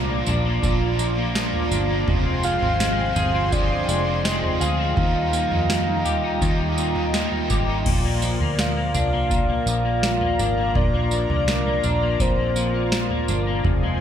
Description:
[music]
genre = dream pop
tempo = 83 BPM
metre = 4/4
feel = straight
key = unclear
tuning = A4 = 442 Hz
[part]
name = biting overdriven guitar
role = accompaniment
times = 0.0-8.4 s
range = F2 to F4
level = -29 LUFS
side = right 2 dB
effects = harmonic tremolo, wide subtle chorus, dub echo
[part]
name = warm analog pad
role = sustained chords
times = 0.0-14.0 s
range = F4 to D6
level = -27 LUFS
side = right 1 dB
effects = chorus
[part]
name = electric guitar at the edge of break-up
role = arpeggios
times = 0.0-14.0 s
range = F2 to Ab4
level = -27 LUFS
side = left 4 dB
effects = ensemble chorus, dub echo
[part]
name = vintage muted fingered electric bass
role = bass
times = 0.0-14.0 s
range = F1 to F2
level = -25 LUFS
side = equal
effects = none
[part]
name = booming analog drum machine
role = drums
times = 0.3-13.8 s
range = crash cymbal, kick drum, snare drum, tambourine, toms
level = -25 LUFS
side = right 1 dB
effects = none
[part]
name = soft octave-layered synth lead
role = melody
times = 2.4-13.3 s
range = C5 to F5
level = -26 LUFS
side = equal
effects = chorus, dub echo
[sound]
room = moderate plate reverb, RT60 3.3 s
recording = echo-heavy mix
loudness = -19 LUFS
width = side -9 dB against mid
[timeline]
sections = 0.0-7.9 A section; 7.9-14.0 B section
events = none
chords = 0.0 Bb; 2.1 Fm; 5.0 Ebadd9; 7.9 Bb

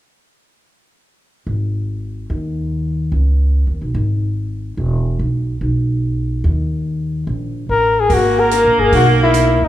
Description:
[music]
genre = jazz, small-group swing and bop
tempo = 145 BPM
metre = 4/4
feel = swing 67% on 8ths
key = G# minor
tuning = A4 = 440 Hz
[part]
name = upright bass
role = bass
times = 1.5-9.7 s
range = E1 to D#2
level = -17 LUFS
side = equal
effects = none
[part]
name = breathy trumpet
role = melody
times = 7.7-9.7 s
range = D#4 to A#4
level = -14 LUFS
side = left 3 dB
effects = none
[part]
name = bright tenor saxophone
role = second line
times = 8.1-9.7 s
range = A#3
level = -16 LUFS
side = right 2 dB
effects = none
[part]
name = open jazz drum kit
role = drums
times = 8.1-9.5 s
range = hi-hat, kick drum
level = -24 LUFS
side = right 1 dB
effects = none
[sound]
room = moderate recital hall reverb, RT60 1.3 s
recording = recorded in a church or concert hall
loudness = -15 LUFS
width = side -13 dB against mid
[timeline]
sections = 1.5-8.1 A section; 8.1-9.7 B section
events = none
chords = 1.5 G#5; 3.1 C#5; 4.8 E5; 6.4 D#5; 8.1 G#madd9

